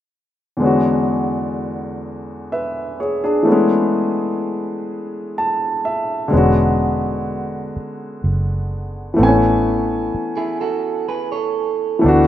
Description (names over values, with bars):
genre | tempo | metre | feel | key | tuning
R&B | 42 BPM (dotted quarters) | 6/8 | straight | A major | A4 = 442 Hz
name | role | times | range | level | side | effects
warm grand piano | accompaniment | 0.6-12.3 s | E2 to A5 | -17 LUFS | left 1 dB | none
vintage muted fingered electric bass | bass | 6.3-12.3 s | E1 to D2 | -20 LUFS | right 1 dB | none
electric guitar at the edge of break-up | second line | 10.4-12.0 s | E4 to C#5 | -21 LUFS | right 8 dB | none
room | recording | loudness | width
moderate plate reverb, RT60 3.1 s | rough home demo mix | -17 LUFS | side -12 dB against mid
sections
0.6-6.3 A section; 6.3-12.3 B section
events
grand piano fill 4.9-6.3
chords
0.6 E13; 3.5 Amaj7; 6.3 E13; 9.2 Amaj7